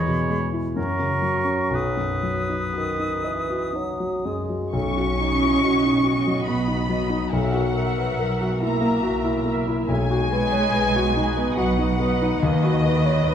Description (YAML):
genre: classical, romantic movement for piano and orchestra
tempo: 57-74 BPM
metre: 3/4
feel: rubato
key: B major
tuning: A4 = 440 Hz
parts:
  - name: warm concert grand piano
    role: melody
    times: 0.0-13.3 s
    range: B1 to D#5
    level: -23 LUFS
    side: left 2 dB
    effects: none
  - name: bright silver concert flute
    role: second line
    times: 0.0-4.4 s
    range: B5 to D#6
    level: -30 LUFS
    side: left 1 dB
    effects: none
  - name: warm oboe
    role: second line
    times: 0.0-3.8 s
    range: A#4 to C#5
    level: -28 LUFS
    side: right 2 dB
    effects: none
  - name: mellow bassoon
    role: accompaniment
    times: 0.0-4.7 s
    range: D#3 to G#3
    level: -30 LUFS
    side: right 2 dB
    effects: none
  - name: muted chamber violin section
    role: melody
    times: 4.7-13.3 s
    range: D#5 to C#6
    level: -30 LUFS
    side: left 2 dB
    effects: none
  - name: muted chamber violin section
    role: second line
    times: 4.7-13.3 s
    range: D#5 to C#6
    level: -29 LUFS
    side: left 4 dB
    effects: none
  - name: muted symphonic cello section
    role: bass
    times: 4.7-13.3 s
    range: D#3 to C#4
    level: -25 LUFS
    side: right 3 dB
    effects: none
  - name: muted symphonic double bass section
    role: bass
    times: 4.8-13.3 s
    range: B1 to D#2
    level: -28 LUFS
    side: right 2 dB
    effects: none
  - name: muted symphonic viola section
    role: accompaniment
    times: 5.2-13.3 s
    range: F#4 to E5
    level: -30 LUFS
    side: right 3 dB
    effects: none
room: moderate recital hall reverb, RT60 1.5 s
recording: none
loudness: -20 LUFS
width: side -8 dB against mid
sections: 0.0-4.7 A section; 4.7-13.3 A section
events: none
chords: 0.0 C#m7/E; 0.8 F#; 1.7 B; 7.3 F#7/B; 9.9 B; 12.4 B/D#